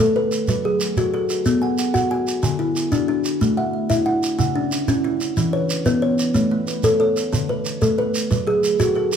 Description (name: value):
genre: southern african traditional, mbira-style interlocking cycle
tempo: 123 BPM (dotted quarters)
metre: 12/8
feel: straight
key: A major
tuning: A4 = 440 Hz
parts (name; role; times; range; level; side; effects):
- kalimba; arpeggios; 0.0-9.2 s; C#3 to G#5; -19 LUFS; left 2 dB; none
- kalimba; arpeggios; 0.0-9.2 s; D3 to G#5; -26 LUFS; right 7 dB; none
- shekere; percussion; 0.3-9.2 s; none; -25 LUFS; right 3 dB; none
room: moderate large studio reverb, RT60 1.1 s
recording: band playing live in one room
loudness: -18 LUFS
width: side -8 dB against mid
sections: 0.0-9.2 A section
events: none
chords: 0.5 F#m; 1.5 B5; 2.4 D; 3.4 A5; 4.4 C#m; 5.4 E5; 6.3 A; 7.3 D5; 8.3 F#m